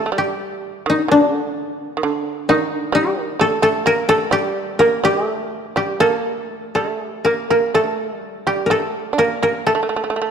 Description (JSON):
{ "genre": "japanese traditional, Japanese chamber music", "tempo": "60-66 BPM", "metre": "2/4", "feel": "rubato", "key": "unclear", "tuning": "A4 = 440 Hz", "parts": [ { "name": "koto", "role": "melody", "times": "0.0-10.3 s", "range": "D4 to Bb4", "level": "-18 LUFS", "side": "left 2 dB", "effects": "none" }, { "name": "shamisen", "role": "second line", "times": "0.0-10.3 s", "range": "D3 to D4", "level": "-20 LUFS", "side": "right 4 dB", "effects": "none" } ], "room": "moderate concert hall reverb, RT60 2.2 s", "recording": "dark, warm production", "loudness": "-16 LUFS", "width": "side -7 dB against mid", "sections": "0.0-10.3 A section", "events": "none", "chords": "none" }